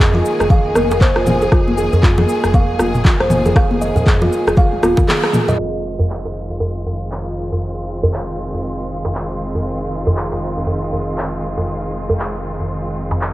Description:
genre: afro house.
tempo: 118 BPM.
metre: 4/4.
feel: swing 60% on 16ths.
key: F minor.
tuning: A4 = 443 Hz.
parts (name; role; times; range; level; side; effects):
clear studio string section; sustained chords; 0.0-13.3 s; Eb3 to Ab4; -24 LUFS; equal; sidechain pumping, low-pass filter, cassette tape.
kalimba; arpeggios; 0.0-5.6 s; F4 to F5; -18 LUFS; right 1 dB; sidechain pumping, cassette tape, tape echo.
round analog bass; bass; 0.0-13.3 s; Eb1 to F2; -24 LUFS; equal; sidechain pumping.
afro-pop drum kit; drums; 0.0-13.3 s; cabasa, crash cymbal, handclaps, rim click, toms; -22 LUFS; equal; cassette tape.
congas; percussion; 0.1-5.5 s; none; -22 LUFS; left 2 dB; none.
djembe; percussion; 0.4-13.2 s; none; -21 LUFS; equal; none.
electronic kick drum; drums; 0.5-5.1 s; none; -13 LUFS; equal; cassette tape.
room: light reverb, small room ambience.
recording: home recording on cassette, low-pass filter.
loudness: -15 LUFS.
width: side -16 dB against mid.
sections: 0.0-5.6 A section; 5.6-13.3 B section.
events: drum fill 4.6-5.6; band accent 5.1; filter sweep on string section 5.6-13.3; filter sweep 5.6-13.3.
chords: 0.0 Fm7.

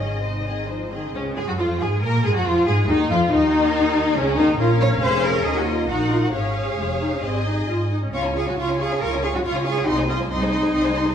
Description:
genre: quick classical-period movement for string orchestra.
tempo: 130-143 BPM.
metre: 4/4.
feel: rubato.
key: Db major.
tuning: A4 = 436 Hz.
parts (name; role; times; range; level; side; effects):
rich symphonic violin section; melody; 0.0-11.1 s; Db4 to Db6; -29 LUFS; left 3 dB; none.
rich symphonic violin section; second line; 0.0-11.1 s; Db4 to F5; -26 LUFS; left 4 dB; none.
clear symphonic viola section; accompaniment; 0.0-11.1 s; Db3 to F4; -26 LUFS; equal; none.
rich symphonic cello section; bass; 0.0-11.1 s; C3 to Db5; -24 LUFS; right 1 dB; none.
rich symphonic double bass section; bass; 0.0-11.1 s; F1 to Bb2; -24 LUFS; right 1 dB; none.
room: moderate scoring stage reverb, RT60 1.6 s.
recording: none.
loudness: -18 LUFS.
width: side -8 dB against mid.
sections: 0.0-1.1 A section; 1.1-11.1 A section.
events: none.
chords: 0.2 Ab; 1.1 Db; 2.9 Dbadd9; 4.6 Bbm; 5.5 Ebm7; 6.3 Db/Ab; 7.2 Ab; 8.1 Db; 9.9 Ab/C.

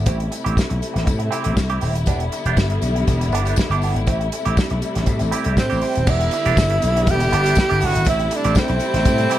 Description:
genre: disco.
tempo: 120 BPM.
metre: 4/4.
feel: straight.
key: E minor.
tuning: A4 = 437 Hz.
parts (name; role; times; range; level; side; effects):
dark studio string section; sustained chords; 0.0-9.4 s; C3 to E4; -25 LUFS; left 2 dB; none.
vintage slap bass; bass; 0.0-9.3 s; D#1 to A2; -21 LUFS; equal; none.
semi-hollow electric guitar; accompaniment; 0.1-9.4 s; B3 to G4; -27 LUFS; right 8 dB; wah.
warm soul drum kit; drums; 0.1-9.4 s; crash cymbal, hi-hat, kick drum, snare drum; -21 LUFS; equal; none.
tambourine; percussion; 0.1-9.4 s; none; -37 LUFS; left 15 dB; none.
breathy tenor saxophone; melody; 5.6-9.4 s; C4 to G4; -20 LUFS; right 2 dB; none.
room: little or no reverb.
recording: none.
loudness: -16 LUFS.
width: side -12 dB against mid.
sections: 0.0-6.1 A section; 6.1-9.4 B section.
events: none.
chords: 0.1 Am7; 2.1 Em7; 4.1 Am7; 6.1 Em7; 8.1 Am7.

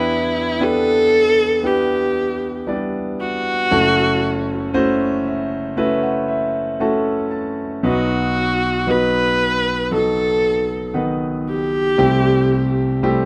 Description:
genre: pop ballad.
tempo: 58 BPM.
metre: 4/4.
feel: straight.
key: E minor.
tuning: A4 = 439 Hz.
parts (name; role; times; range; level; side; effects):
warm viola; melody; 0.0-13.0 s; E4 to B4; -21 LUFS; equal; none.
warm grand piano; accompaniment; 0.0-13.3 s; F#1 to A5; -21 LUFS; equal; none.
room: moderate studio reverb, RT60 0.5 s.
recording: band playing live in one room.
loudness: -19 LUFS.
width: mono.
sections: 0.0-13.3 A section.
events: grand piano fill 4.8-7.9.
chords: 0.0 Em7; 3.7 F#m7; 7.9 B; 12.0 Am7/C.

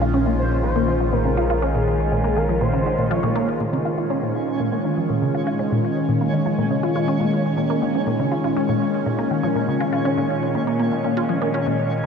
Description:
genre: ambient, sequencer-driven space music.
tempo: 121 BPM.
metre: 4/4.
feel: straight.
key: Bb minor.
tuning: A4 = 440 Hz.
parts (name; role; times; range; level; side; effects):
phased analog pad; sustained chords; 0.0-12.1 s; Bb2 to F4; -22 LUFS; equal; phaser, chorus.
resonant blip pluck; riff; 0.0-12.1 s; Bb2 to F4; -23 LUFS; left 1 dB; phaser, wide subtle chorus, ping-pong delay.
analog drone; bass; 0.0-3.6 s; Bb1; -24 LUFS; equal; chorus.
expressive portamento lead; melody; 0.4-3.5, 11.5-12.1 s; Ab4 to Db5; -27 LUFS; equal; ensemble chorus, ping-pong delay.
twinkling granular texture; texture; 4.1-12.1 s; Db4; -28 LUFS; right 2 dB; built-in reverb.
room: wet huge ambient reverb, RT60 8.1 s.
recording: dark, warm production.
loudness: -18 LUFS.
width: side -6 dB against mid.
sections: 0.0-3.6 A section; 3.6-12.1 B section.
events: filter sweep on synth arpeggio sound 0.0-3.6.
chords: 0.0 Bbm.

